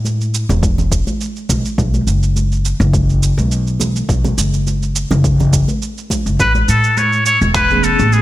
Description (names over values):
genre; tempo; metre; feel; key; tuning
sunset chillout; 104 BPM; 4/4; swing 54% on 16ths; unclear; A4 = 440 Hz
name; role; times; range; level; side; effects
upright bass; bass; 0.0-8.2 s; E1 to A2; -15 LUFS; equal; none
congas; percussion; 0.0-8.1 s; none; -24 LUFS; right 1 dB; none
electronic cabasa and finger snaps; drums; 0.1-8.2 s; none; -25 LUFS; right 5 dB; small room reverb
electronic kick drum; drums; 0.6-7.7 s; none; -19 LUFS; equal; small room reverb
trumpet with straight mute; melody; 6.4-8.2 s; G#4 to C#5; -13 LUFS; left 1 dB; ping-pong delay
mellow tine electric piano; accompaniment; 7.7-8.2 s; E3 to G#4; -17 LUFS; right 1 dB; medium stereo tremolo, auto-pan
room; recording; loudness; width
light reverb, small room ambience; bright 1980s-style digital production; -13 LUFS; side -15 dB against mid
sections
0.0-8.2 A section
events
none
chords
0.0 A5; 1.5 B5; 6.4 Amaj9